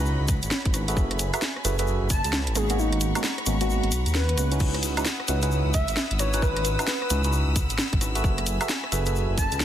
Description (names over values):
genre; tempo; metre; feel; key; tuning
UK garage, two-step garage; 132 BPM; 4/4; swing 63% on 16ths; C# minor; A4 = 441 Hz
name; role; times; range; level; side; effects
rich chamber violin section; sustained chords; 0.0-9.6 s; C#5 to E6; -34 LUFS; left 1 dB; sidechain pumping
tine electric piano; stabs; 0.0-9.4 s; G#3 to E5; -30 LUFS; right 2 dB; phaser, dub echo
dark detuned saw bass; bass; 0.0-9.6 s; F#1 to D#2; -26 LUFS; equal; sidechain pumping
egg shaker; percussion; 0.1-9.6 s; none; -35 LUFS; left 4 dB; none
electronic kick drum; drums; 0.3-9.5 s; none; -26 LUFS; equal; none
garage drum kit; drums; 0.3-9.6 s; crash cymbal, hi-hat, rim click, snare drum, woodblock; -28 LUFS; right 1 dB; overdrive
airy dreamy lead; melody; 2.1-9.6 s; D#4 to A5; -31 LUFS; left 1 dB; chorus, dub echo
room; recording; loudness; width
light reverb, digital ambience; dense, heavily limited modern master; -22 LUFS; side -11 dB against mid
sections
0.0-9.6 A section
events
kick drops out 2.8-4.6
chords
0.0 C#m11; 1.0 F#m11; 2.6 G#m11; 4.6 C#m11; 8.2 F#m11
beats
0.06 0.51 | 0.97 1.42 1.88 2.33 | 2.79 3.24 3.69 4.15 | 4.60 5.06 5.51 5.97 | 6.42 6.88 7.33 7.79 | 8.24 8.69 9.15 9.60